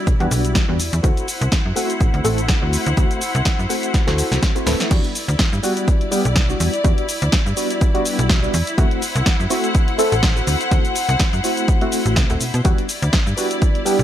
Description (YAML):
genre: filtered disco house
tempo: 124 BPM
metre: 4/4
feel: swing 55% on 16ths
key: E minor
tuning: A4 = 440 Hz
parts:
  - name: barky reed electric piano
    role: accompaniment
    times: 0.0-14.0 s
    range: G3 to B4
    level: -22 LUFS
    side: equal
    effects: fast tremolo, phaser, sidechain pumping, low-pass filter
  - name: rich symphonic string section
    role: sustained chords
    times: 0.0-14.0 s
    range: E4 to F#5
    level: -25 LUFS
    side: left 2 dB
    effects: sidechain pumping, low-pass filter
  - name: slap-like FM bass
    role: bass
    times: 0.1-14.0 s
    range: D1 to B2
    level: -20 LUFS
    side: equal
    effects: sidechain pumping, low-pass filter
  - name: electronic kick drum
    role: drums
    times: 0.1-13.7 s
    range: none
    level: -17 LUFS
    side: equal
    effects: none
  - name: punchy analog drum machine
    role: drums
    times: 0.1-14.0 s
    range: cabasa, crash cymbal, hi-hat, snare drum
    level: -23 LUFS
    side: equal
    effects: sidechain pumping on hats, sidechain pumping on perc, sidechain pumping on cymbals
room: light reverb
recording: none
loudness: -16 LUFS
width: side -11 dB against mid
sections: 0.0-4.9 A section; 4.9-14.0 B section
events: filter sweep 0.0-4.9; drum fill 3.9-4.9; drop 4.9-14.0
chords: 0.0 Em7; 1.0 D9; 4.9 Em7; 8.8 D9 (rootless); 12.7 Em7